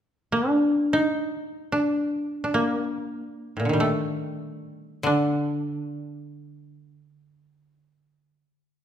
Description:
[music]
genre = japanese traditional, Japanese chamber music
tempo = free time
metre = none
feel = none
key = D miyako bushi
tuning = A4 = 441 Hz
[part]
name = koto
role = melody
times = 0.3-8.8 s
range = A2 to Eb4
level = -24 LUFS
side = equal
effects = none
[part]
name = koto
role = accompaniment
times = 5.0-8.4 s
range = D3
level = -29 LUFS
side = equal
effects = none
[sound]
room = wet recital hall reverb, RT60 1.5 s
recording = recorded in a church or concert hall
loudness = -23 LUFS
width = side -9 dB against mid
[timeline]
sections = 0.0-8.8 A section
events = none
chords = none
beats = free time

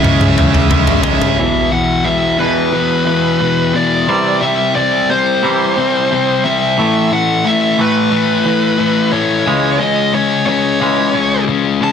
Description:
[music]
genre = quiet-loud alternative rock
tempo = 89 BPM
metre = 4/4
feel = straight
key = unclear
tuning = A4 = 440 Hz
[part]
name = high-gain lead guitar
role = melody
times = 0.0-11.9 s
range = B4 to A5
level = -16 LUFS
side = right 3 dB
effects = distortion, digital delay
[part]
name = ensemble organ-string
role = sustained chords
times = 0.0-1.4 s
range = C#4 to G#4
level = -32 LUFS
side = left 2 dB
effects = none
[part]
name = fuzz guitar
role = riff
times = 0.0-11.9 s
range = E2 to C#4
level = -15 LUFS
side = left 6 dB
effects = distortion
[part]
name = overdriven electric guitar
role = riff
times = 0.0-1.4 s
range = C#3 to C#4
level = -21 LUFS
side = right 1 dB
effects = none
[part]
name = tight distorted guitar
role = riff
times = 0.0-1.4 s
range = C#3 to C#4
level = -19 LUFS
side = right 14 dB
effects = distortion
[part]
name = fuzz fingered electric bass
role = bass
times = 0.0-0.9 s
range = C#2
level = -16 LUFS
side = right 1 dB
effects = overdrive
[part]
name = toms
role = drums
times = 0.0-1.4 s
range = none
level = -16 LUFS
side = equal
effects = none
[part]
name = twangy electric guitar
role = arpeggios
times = 1.4-11.9 s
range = E2 to A3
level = -21 LUFS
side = right 3 dB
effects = phaser, digital delay
[sound]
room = light reverb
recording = dense, heavily limited modern master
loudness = -11 LUFS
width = side -7 dB against mid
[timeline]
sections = 0.0-1.4 A section; 1.4-11.9 B section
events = drum fill 0.0-1.4; half time 1.4-11.9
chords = 0.0 C#m; 1.4 E5; 4.1 C; 6.8 A5; 9.5 C#m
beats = 0.04 0.71 | 1.39 2.06 2.73 3.41 | 4.08 4.75 5.43 6.10 | 6.78 7.45 8.12 8.80 | 9.47 10.14 10.81 11.48

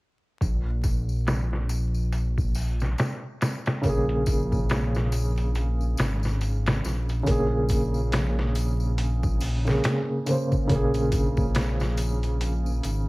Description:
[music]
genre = trip hop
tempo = 70 BPM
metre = 4/4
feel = swing 59% on 16ths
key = Bb minor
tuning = A4 = 440 Hz
[part]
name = dark detuned saw bass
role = bass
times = 0.4-13.1 s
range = Ab1 to Bb1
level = -25 LUFS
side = equal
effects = none
[part]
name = trip hop sampler-style drum kit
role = drums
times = 0.4-13.1 s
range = hi-hat, kick drum, snare drum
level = -27 LUFS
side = equal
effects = low-pass filter on hats, studio reverb, low-pass filter on kick, low-pass filter on snare
[part]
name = tambourine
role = percussion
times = 0.4-13.0 s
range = none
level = -43 LUFS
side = left 5 dB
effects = none
[part]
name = felt-muted upright piano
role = accompaniment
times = 3.8-13.1 s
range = Db3 to C5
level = -27 LUFS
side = right 1 dB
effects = tremolo, tape echo
[sound]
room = small room ambience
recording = vinyl crackle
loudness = -23 LUFS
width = side -22 dB against mid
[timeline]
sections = 0.4-7.3 A section; 7.3-13.1 B section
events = none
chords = 0.4 Bbm7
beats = | 0.41 1.27 2.12 2.98 | 3.84 4.70 5.55 6.41 | 7.27 8.12 8.98 9.84 | 10.70 11.55 12.41

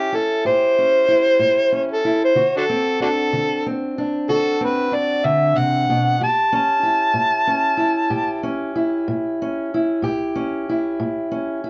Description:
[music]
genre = acoustic country blues, solo or duo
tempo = 63 BPM (dotted quarters)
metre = 12/8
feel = straight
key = A mixolydian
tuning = A4 = 440 Hz
[part]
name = overdriven harmonica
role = melody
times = 0.0-8.4 s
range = D4 to A5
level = -19 LUFS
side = equal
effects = none
[part]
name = fingerpicked steel-string acoustic guitar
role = accompaniment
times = 0.0-11.7 s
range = A2 to G4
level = -24 LUFS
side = equal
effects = none
[sound]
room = moderate studio reverb, RT60 0.5 s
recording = dark, warm production, nothing above 7.8 kHz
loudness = -19 LUFS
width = mono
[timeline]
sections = 0.0-11.7 A section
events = harmonica solo 0.0-11.7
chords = 0.0 A7; 2.4 D7; 6.2 A7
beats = 0.45 1.41 | 2.37 3.32 4.28 5.24 | 6.20 7.16 8.12 9.07 | 10.03 10.99

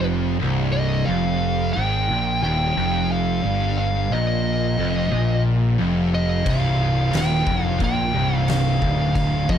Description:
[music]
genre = stoner and doom metal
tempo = 89 BPM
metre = 4/4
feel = straight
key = unclear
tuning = A4 = 440 Hz
[part]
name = fuzz lead guitar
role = melody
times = 0.0-9.6 s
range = Eb5 to G5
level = -25 LUFS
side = left 1 dB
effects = distortion, slapback echo
[part]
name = crunchy overdriven guitar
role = riff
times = 0.0-9.6 s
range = C2 to Bb2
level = -28 LUFS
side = left 1 dB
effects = none
[part]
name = thick fuzz guitar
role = riff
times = 0.0-9.6 s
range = C2 to Bb2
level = -26 LUFS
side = left 9 dB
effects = distortion
[part]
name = thick fuzz guitar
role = riff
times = 0.0-9.6 s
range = C2 to Bb2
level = -24 LUFS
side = right 6 dB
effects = distortion
[part]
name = fuzz fingered electric bass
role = bass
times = 0.0-9.6 s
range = C1 to Bb1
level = -26 LUFS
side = left 1 dB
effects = overdrive
[part]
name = oversized low-tuned drum kit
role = drums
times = 6.5-9.6 s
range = crash cymbal, kick drum, snare drum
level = -25 LUFS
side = left 1 dB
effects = none
[sound]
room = light reverb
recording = none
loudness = -18 LUFS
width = side -9 dB against mid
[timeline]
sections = 0.0-9.6 A section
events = none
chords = 0.0 Cm; 1.1 Ebadd9; 6.5 Cm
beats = 0.41 | 1.08 1.75 2.43 3.10 | 3.77 4.45 5.12 5.79 | 6.46 7.14 7.81 8.48 | 9.16

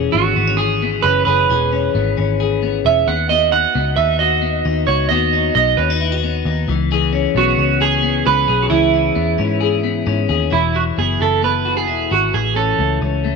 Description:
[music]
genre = indie pop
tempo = 133 BPM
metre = 4/4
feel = straight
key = E major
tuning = A4 = 440 Hz
[part]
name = clean electric guitar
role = arpeggios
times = 0.0-13.4 s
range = E3 to G#4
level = -20 LUFS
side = left 12 dB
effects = lush chorus, tape echo
[part]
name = vintage muted picked electric bass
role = bass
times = 0.0-13.4 s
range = E1 to G#2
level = -20 LUFS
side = equal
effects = none
[part]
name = clean electric guitar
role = melody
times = 0.1-13.0 s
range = E4 to F#5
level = -17 LUFS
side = right 10 dB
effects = lush chorus
[sound]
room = light reverb, digital ambience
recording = 1960s-style stereo with parts hard left and right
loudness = -14 LUFS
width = side -4 dB against mid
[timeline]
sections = 0.0-10.5 A section; 10.5-13.4 B section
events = none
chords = 0.0 E6; 3.1 B; 6.7 C#m7; 10.5 Esus2; 12.3 Amaj7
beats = 0.14 0.59 1.04 | 1.49 1.95 2.40 2.85 | 3.30 3.75 4.20 4.65 | 5.10 5.55 6.00 6.46 | 6.91 7.36 7.81 8.26 | 8.71 9.16 9.62 10.07 | 10.52 10.97 11.43 11.88 | 12.33 12.79 13.24

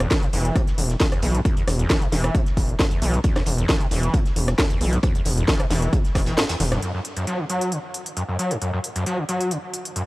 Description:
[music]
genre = driving peak-time techno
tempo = 134 BPM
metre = 4/4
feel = straight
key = unclear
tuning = A4 = 437 Hz
[part]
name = screaming distorted acid line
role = riff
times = 0.0-10.0 s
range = E2 to F#3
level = -26 LUFS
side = equal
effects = distortion, lush chorus, sidechain pumping, tape echo
[part]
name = gritty driven synth bass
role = bass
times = 0.0-6.8 s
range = E1 to B1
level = -22 LUFS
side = equal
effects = sidechain pumping
[part]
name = techno drum kit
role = drums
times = 0.0-10.1 s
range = hi-hat, rim click, snare drum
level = -26 LUFS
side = equal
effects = overdrive, sidechain pumping on hats, studio reverb
[part]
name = electronic kick drum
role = drums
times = 0.1-6.2 s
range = none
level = -22 LUFS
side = equal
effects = overdrive, studio reverb
[part]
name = modern studio drum kit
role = drums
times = 0.1-6.8 s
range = hi-hat, snare drum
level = -38 LUFS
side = right 2 dB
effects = sidechain pumping on hats, high-pass filter on hats, studio reverb, high-pass filter on snare, high-pass filter on room
[sound]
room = little or no reverb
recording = dry, gritty hardware recording, transformer saturation, cassette tape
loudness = -19 LUFS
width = side -20 dB against mid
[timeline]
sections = 0.0-6.8 A section; 6.8-10.1 B section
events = kick drops out 6.4-6.8; band accent 6.4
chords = 0.0 E5; 6.8 F#5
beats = 0.11 0.56 1.00 | 1.45 1.90 2.35 2.79 | 3.24 3.69 4.14 4.59 | 5.03 5.48 5.93 6.38 | 6.82 7.27 7.72 8.17 | 8.62 9.06 9.51 9.96

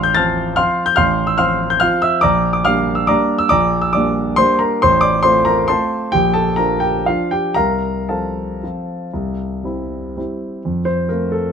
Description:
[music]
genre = classical, piano waltz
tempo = 112-152 BPM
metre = 3/4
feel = rubato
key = F major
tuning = A4 = 440 Hz
[part]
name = warm grand piano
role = solo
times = 0.0-11.5 s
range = A1 to A6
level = -14 LUFS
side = equal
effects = none
[sound]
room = light reverb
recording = close, detailed microphones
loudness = -14 LUFS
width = side -7 dB against mid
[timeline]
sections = 0.0-10.7 A section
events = none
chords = 0.0 F/A; 2.2 Gm/Bb; 4.8 F/A; 6.1 Bb6; 7.6 F/C; 9.1 C; 10.7 F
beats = 0.16 0.58 | 0.99 1.40 1.82 | 2.24 2.65 3.09 | 3.52 3.95 4.38 | 4.82 5.24 5.69 | 6.13 6.58 7.07 | 7.58 8.09 8.62 | 9.13 9.64 10.17 | 10.66 11.10

